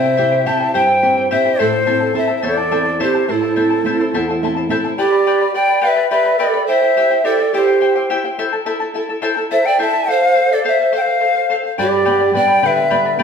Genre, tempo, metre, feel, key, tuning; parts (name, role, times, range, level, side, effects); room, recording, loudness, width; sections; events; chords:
andean folk, Andean ensemble; 71 BPM (dotted quarters); 6/8; straight; A minor; A4 = 440 Hz
bright large quena; melody; 0.0-13.2 s; A4 to A5; -16 LUFS; left 3 dB
breathy pan flute; second line; 0.0-13.2 s; E4 to E5; -18 LUFS; right 4 dB
charango; accompaniment; 0.0-13.2 s; E4 to B5; -20 LUFS; left 3 dB
flamenco guitar; accompaniment; 0.0-4.9, 11.8-13.2 s; E2 to A4; -22 LUFS; right 2 dB
wet large studio reverb, RT60 1.2 s; band playing live in one room; -13 LUFS; side -6 dB against mid
0.0-5.0 A section; 5.0-13.2 A section
0.0 C; 1.6 Am; 5.0 G; 6.7 C; 8.4 Am; 10.1 F; 11.8 G